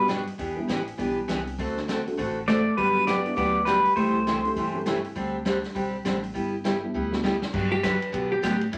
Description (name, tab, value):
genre	country, western swing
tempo	202 BPM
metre	4/4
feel	swing 61% on 8ths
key	G major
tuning	A4 = 440 Hz
part	pedal steel guitar	melody	0.0-0.1, 2.5-4.8 s	B4 to D5	-26 LUFS	equal	none
part	vintage hollow-body jazz guitar	second line	0.0-0.1, 2.5-4.8, 7.7-8.6 s	G3 to B4	-29 LUFS	equal	none
part	dark upright piano	accompaniment	0.0-7.2 s	G3 to G4	-35 LUFS	equal	none
part	upright bass	bass	0.0-8.8 s	G1 to B2	-37 LUFS	equal	none
part	picked steel-string acoustic guitar	accompaniment	0.1-8.8 s	B2 to B4	-31 LUFS	equal	none
part	vintage drum kit	drums	0.1-8.8 s	crash cymbal, hi-hat, kick drum, ride cymbal, snare drum	-37 LUFS	equal	none
room	wet studio reverb, RT60 0.7 s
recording	vinyl crackle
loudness	-26 LUFS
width	mono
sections	0.0-7.5 A section; 7.5-8.8 B section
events	drum fill 6.9-7.5; hollow-body jazz guitar solo 7.5-8.8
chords	0.4 Em7; 1.6 D7; 2.8 Gmaj7; 4.0 C6; 5.2 D7sus4; 6.3 G6; 7.5 Gmaj7